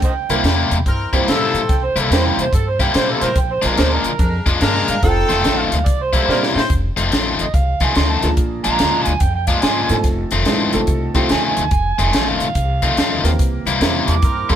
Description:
electric blues shuffle; 144 BPM; 4/4; swing 64% on 8ths; A4 = 441 Hz
overdriven harmonica; second line; 0.0-14.6 s; G4 to D6; -22 LUFS; right 5 dB
upright bass; bass; 0.0-14.6 s; F1 to Bb2; -21 LUFS; equal
compact cocktail drum kit; drums; 0.0-14.6 s; hi-hat, kick drum, snare drum; -20 LUFS; equal
clear upright piano; accompaniment; 0.3-14.6 s; E3 to D5; -23 LUFS; right 3 dB
cranked stack guitar; riff; 0.3-14.6 s; F2 to E4; -19 LUFS; left 4 dB; overdrive
bright horn section; stabs; 0.9-6.7, 14.2-14.5 s; C4 to C5; -22 LUFS; left 2 dB
light reverb; band playing live in one room; -14 LUFS; side -10 dB against mid
0.0-6.7 A section; 6.7-14.6 A section
harmonica solo 0.0-14.6; drum fill 6.3-6.7
0.0 C7; 3.4 Bb7; 5.0 F7; 5.9 C7; 6.7 F7; 8.4 Bb7; 10.0 F7; 13.4 C7

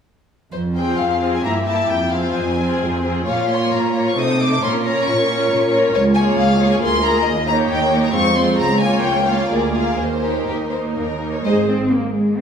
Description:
quick classical-period movement for string orchestra; 121-139 BPM; 3/4; rubato; F minor, Ab major from 5.9 s; A4 = 440 Hz
warm chamber violin section; melody; 0.5-11.7 s; Bb4 to Eb6; -22 LUFS; left 3 dB
warm chamber cello section; bass; 0.5-12.4 s; Db2 to C4; -21 LUFS; right 2 dB
rich studio violin section; second line; 0.7-11.7 s; F4 to E5; -21 LUFS; left 2 dB
warm studio viola section; accompaniment; 0.7-11.7 s; Ab3 to Ab4; -22 LUFS; right 2 dB
rich chamber double bass section; bass; 11.4-11.8 s; Ab1; -23 LUFS; right 4 dB
moderate scoring stage reverb, RT60 1.9 s; studio reverb; -15 LUFS; side -7 dB against mid
0.5-11.4 A section
0.5 Fm; 1.4 Edim/G; 1.9 Fm; 3.3 Bbm; 4.2 Adim/C; 4.6 Bbm; 5.9 Bbm7/Db; 6.8 Bb7/D; 7.2 Eb7; 8.1 Fm; 8.6 Bbm/Db; 9.5 Bb7/D; 10.0 Eb5; 11.4 Ab

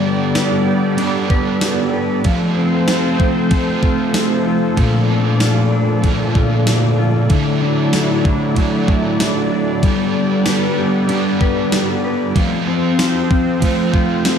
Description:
dream pop; 95 BPM; 4/4; straight; G major; A4 = 435 Hz
crunchy overdriven guitar; accompaniment; 0.0-14.4 s; Bb2 to A4; -20 LUFS; right 4 dB; harmonic tremolo, wide subtle chorus
warm analog pad; sustained chords; 0.0-14.4 s; Bb2 to D5; -19 LUFS; equal; chorus
mellow electric guitar; arpeggios; 0.0-14.4 s; Bb2 to B4; -19 LUFS; left 4 dB; lush chorus, digital delay
gated 80s digital drum machine; drums; 0.4-14.4 s; kick drum, ride cymbal, snare drum, tambourine; -19 LUFS; equal; gated reverb, gated reverb snare, overdrive
light reverb; -14 LUFS; side -7 dB against mid
0.0-14.4 A section
0.0 Gadd9; 2.2 F; 4.8 Bbmaj7; 7.3 Dadd9; 9.8 Gadd9; 12.4 F

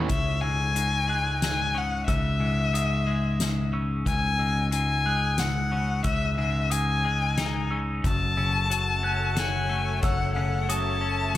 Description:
post-rock; 91 BPM; 3/4; straight; C# minor; A4 = 440 Hz
evolving wavetable pad; sustained chords; 0.1, 8.3-11.4 s; A3 to F#5; -37 LUFS; left 2 dB; ensemble chorus, built-in reverb
glockenspiel with rubber mallets; arpeggios; 0.0-11.4 s; C#6 to F#6; -36 LUFS; right 5 dB; slapback echo
twelve-string electric guitar; arpeggios; 0.0-11.4 s; C#2 to F#4; -32 LUFS; left 3 dB; spring reverb, slapback echo
modern bright picked electric bass; bass; 0.0-11.4 s; F#1 to C#2; -27 LUFS; equal
rich violin; melody; 0.1-11.4 s; E5 to A5; -28 LUFS; left 4 dB; slapback echo
soft-mallet drum kit; drums; 0.1-11.4 s; hi-hat, kick drum, snare drum; -31 LUFS; left 1 dB
light reverb; -23 LUFS; side -13 dB against mid
0.1-11.4 A section
0.1 C#madd9; 8.0 F#m

